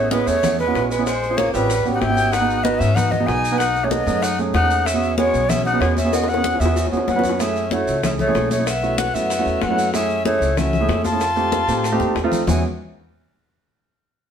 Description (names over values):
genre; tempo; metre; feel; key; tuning
Afro-Cuban jazz; 189 BPM; 4/4; straight; E major; A4 = 435 Hz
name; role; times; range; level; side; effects
breathy bright concert flute; melody; 0.0-12.6 s; B4 to A5; -22 LUFS; left 1 dB; none
mellow tenor saxophone; second line; 0.0-12.6 s; E3 to F4; -26 LUFS; left 2 dB; none
dark concert grand piano; accompaniment; 0.0-12.6 s; G#3 to B4; -22 LUFS; right 4 dB; none
upright bass; bass; 0.0-12.6 s; G#1 to A2; -24 LUFS; left 1 dB; none
bongos; percussion; 0.1-12.6 s; none; -29 LUFS; left 4 dB; none
congas; percussion; 0.1-12.6 s; none; -27 LUFS; left 5 dB; none
maracas; percussion; 0.1-12.6 s; none; -33 LUFS; right 1 dB; none
room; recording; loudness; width
moderate studio reverb, RT60 0.9 s; band playing live in one room; -17 LUFS; side -8 dB against mid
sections
0.0-7.4 A section; 7.4-12.5 B section; 12.5-13.8 C section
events
drum fill 6.1-7.4, 12.0-12.5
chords
0.0 Amaj9; 1.1 A#m9; 1.7 A13; 2.3 G#m7; 3.6 B13; 4.9 E69; 7.4 F#m7; 8.7 B7sus4; 9.9 F#m7; 11.2 F7; 12.5 E69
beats
0.12 0.43 0.75 | 1.07 1.38 1.70 2.02 | 2.33 2.65 2.96 3.28 | 3.60 3.92 4.23 4.55 | 4.86 5.18 5.50 5.81 | 6.13 6.45 6.76 7.08 | 7.40 7.71 8.03 8.35 | 8.67 8.98 9.30 9.62 | 9.94 10.25 10.57 10.89 | 11.21 11.53 11.84 12.16 | 12.48